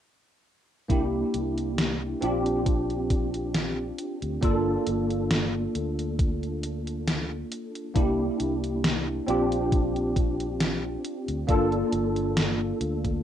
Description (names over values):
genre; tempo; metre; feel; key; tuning
vaporwave; 68 BPM; 4/4; swing 54% on 16ths; G dorian; A4 = 439 Hz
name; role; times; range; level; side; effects
bell-like tine electric piano; accompaniment; 0.9-13.2 s; Bb3 to A4; -27 LUFS; equal; medium stereo tremolo, ensemble chorus, analog delay
fingered electric bass; bass; 0.9-13.2 s; G1 to D2; -32 LUFS; equal; none
electronic kick drum; drums; 0.9-13.2 s; none; -25 LUFS; equal; studio reverb
gated 80s digital drum machine; drums; 0.9-13.2 s; hi-hat, snare drum; -28 LUFS; equal; gated reverb, gated reverb snare, studio reverb
room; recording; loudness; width
light reverb; rough home demo mix; -24 LUFS; side -10 dB against mid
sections
0.9-13.2 A section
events
none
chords
0.9 C7; 2.2 Bb69; 4.4 Gm9; 8.0 C7; 9.3 Bb69; 11.5 Gm9